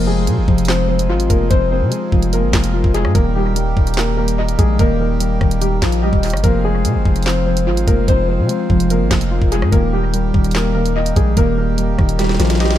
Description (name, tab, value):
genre	hip hop, drill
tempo	146 BPM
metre	4/4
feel	half-time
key	F minor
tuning	A4 = 440 Hz
part	dark grand piano	melody	0.0-12.8 s	F3 to C5	-20 LUFS	left 1 dB	analog delay
part	muted felt-like synth keys	accompaniment	0.0-12.8 s	Eb3 to Eb5	-21 LUFS	left 2 dB	chorus, analog delay
part	hand-pumped harmonium	sustained chords	0.0-12.8 s	C3 to G4	-28 LUFS	right 3 dB	none
part	long sustained 808-style bass	bass	0.0-12.8 s	Eb1 to C3	-18 LUFS	equal	none
part	drill drum kit	drums	0.3-12.8 s	handclaps, hi-hat, kick drum, rim click, snare drum	-18 LUFS	equal	analog delay
room	little or no reverb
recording	echo-heavy mix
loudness	-13 LUFS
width	side -12 dB against mid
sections	0.0-12.8 A section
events	drum fill 12.2-12.8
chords	0.0 Fm7; 3.1 Eb; 6.4 Fm7; 9.7 Eb